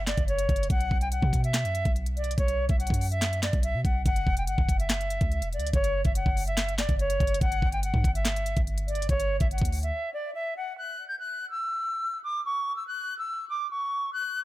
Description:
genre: hip hop, trap.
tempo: 143 BPM.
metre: 4/4.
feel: half-time.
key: unclear.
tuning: A4 = 444 Hz.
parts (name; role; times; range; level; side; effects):
silver concert flute; melody; 0.0-14.4 s; C#5 to G6; -30 LUFS; equal; none.
warm 808-style bass; bass; 0.0-9.9 s; E1 to B2; -29 LUFS; equal; none.
trap drum kit; drums; 0.1-9.9 s; handclaps, hi-hat, kick drum, snare drum; -27 LUFS; equal; none.
room: little or no reverb.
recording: none.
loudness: -25 LUFS.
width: side -16 dB against mid.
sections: 0.0-10.8 A section; 10.8-14.4 B section.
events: break 9.9-10.8.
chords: 0.0 F#5; 0.7 B5; 4.1 F#5; 7.4 G5; 10.8 N.C..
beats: 0.28 | 0.70 1.12 1.54 1.96 | 2.38 2.80 3.22 3.64 | 4.06 4.48 4.90 5.32 | 5.74 6.16 6.57 6.99 | 7.41 7.83 8.25 8.67 | 9.09 9.51 9.93 10.35 | 10.77 11.19 11.61 12.03 | 12.45 12.87 13.29 13.71 | 14.13.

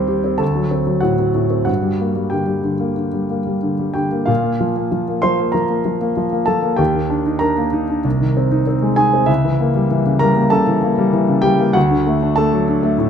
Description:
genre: classical, virtuoso piano study.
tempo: 96 BPM.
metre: 4/4.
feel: rubato.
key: unclear.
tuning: A4 = 440 Hz.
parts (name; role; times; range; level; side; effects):
warm concert grand piano; solo; 0.0-13.1 s; C2 to C6; -15 LUFS; equal; none.
room: moderate recital hall reverb, RT60 1.5 s.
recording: close, detailed microphones.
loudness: -15 LUFS.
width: side -8 dB against mid.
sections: 0.0-4.3 A section; 4.3-13.1 B section.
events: none.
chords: 0.4 D7; 1.7 Gm; 4.3 Bb5; 6.8 Ebmaj7; 8.0 Ab/C; 9.3 C#dim7; 11.8 D.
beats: 0.41 1.04 | 1.68 2.33 2.98 3.63 | 4.29 4.92 5.54 6.17 | 6.79 7.42 8.05 8.67 | 9.28 9.90 10.52 11.13 | 11.75 12.37 12.99.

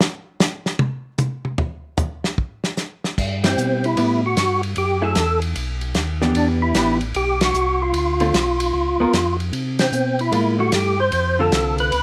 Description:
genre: soul jazz organ trio.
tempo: 151 BPM.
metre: 4/4.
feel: swing 66% on 8ths.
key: C major from 3.2 s.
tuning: A4 = 440 Hz.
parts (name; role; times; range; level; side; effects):
warm soul drum kit; drums; 0.0-12.0 s; crash cymbal, hi-hat, kick drum, ride cymbal, snare drum, toms; -26 LUFS; equal; none.
mellow tonewheel organ; bass; 3.2-12.0 s; A1 to C3; -26 LUFS; equal; slow rotary speaker.
vintage hollow-body jazz guitar; accompaniment; 3.4-11.9 s; D3 to Bb4; -24 LUFS; equal; none.
percussive tonewheel organ; melody; 3.5-12.0 s; C4 to C5; -22 LUFS; equal; slow rotary speaker, overdrive, chorus vibrato.
room: light reverb.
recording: none.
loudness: -20 LUFS.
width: mono.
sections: 0.0-3.2 A section; 3.2-12.0 B section.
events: drum solo 0.0-3.2; band accent 3.4, 7.3, 9.7.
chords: 0.0 N.C.; 3.2 Cmaj7; 4.8 F#m9; 5.6 Baug; 6.3 Em7; 7.9 Dm7; 8.7 Db6; 9.5 C6; 11.1 Dm7.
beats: | 0.01 0.40 0.80 1.20 | 1.59 1.99 2.38 2.78 | 3.17 3.57 3.97 4.36 | 4.76 5.16 5.55 5.95 | 6.35 6.75 7.14 7.54 | 7.94 8.34 8.74 9.13 | 9.53 9.93 10.33 10.73 | 11.13 11.53 11.92.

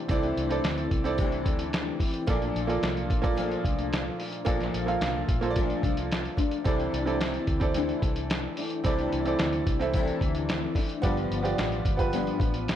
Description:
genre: indie pop, bedroom pop.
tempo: 110 BPM.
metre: 4/4.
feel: straight.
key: C major.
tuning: A4 = 440 Hz.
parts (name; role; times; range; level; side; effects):
bright upright piano; accompaniment; 0.0-12.8 s; Bb3 to F5; -30 LUFS; right 4 dB; none.
nylon-string guitar; accompaniment; 0.0-12.8 s; G2 to D4; -31 LUFS; left 5 dB; ensemble chorus, warbly pitch drift.
vintage muted fingered electric bass; bass; 0.1-12.8 s; G1 to D2; -34 LUFS; equal; none.
lo-fi sampler-style drum kit; drums; 0.1-12.8 s; hi-hat, kick drum, snare drum; -29 LUFS; equal; none.
room: light reverb.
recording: none.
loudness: -25 LUFS.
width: side -10 dB against mid.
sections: 0.0-12.8 A section.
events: none.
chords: 0.0 C69; 2.3 Bbmaj7; 6.7 C69; 11.0 G7.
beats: | 0.10 0.65 1.19 1.74 | 2.28 2.83 3.38 3.92 | 4.47 5.02 5.56 6.11 | 6.66 7.20 7.75 8.30 | 8.84 9.39 9.94 10.48 | 11.03 11.58 12.12 12.67.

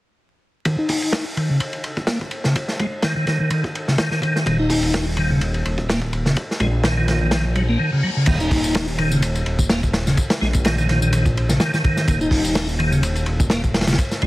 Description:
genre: breakbeat, breaks.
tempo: 126 BPM.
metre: 4/4.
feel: swing 55% on 16ths.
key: unclear.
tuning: A4 = 441 Hz.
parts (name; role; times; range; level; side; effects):
tonewheel organ; riff; 0.7-14.3 s; Db3 to Eb4; -21 LUFS; equal; overdrive, chorus vibrato, slow rotary speaker, low-pass filter, ping-pong delay.
crunchy breakbeat drum kit; drums; 0.7-14.3 s; crash cymbal, hi-hat, kick drum, ride cymbal, snare drum; -22 LUFS; equal; high-pass filter on kick, high-pass filter on cymbals, high-pass filter on hats, high-pass filter on snare, high-pass filter on room.
dark detuned saw bass; bass; 4.5-14.3 s; Eb1 to Bb1; -22 LUFS; equal; none.
reverse cymbal; sound effects; 7.5-8.3 s; none; -32 LUFS; left 6 dB; none.
tambourine; drums; 8.3-14.2 s; none; -33 LUFS; left 2 dB; none.
room: light reverb, studio ambience.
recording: heavily compressed radio sound, vinyl crackle.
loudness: -17 LUFS.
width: side -18 dB against mid.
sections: 0.7-8.3 A section; 8.3-14.3 B section.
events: filter sweep on tonewheel organ 0.7-8.3; reverse cymbal 7.5-8.3.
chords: 0.7 Eb5.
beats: | 0.65 1.13 1.60 2.08 | 2.56 3.03 3.51 3.98 | 4.46 4.94 5.41 5.89 | 6.37 6.84 7.32 7.79 | 8.27 8.75 9.22 9.70 | 10.18 10.65 11.13 11.60 | 12.08 12.56 13.03 13.51 | 13.98.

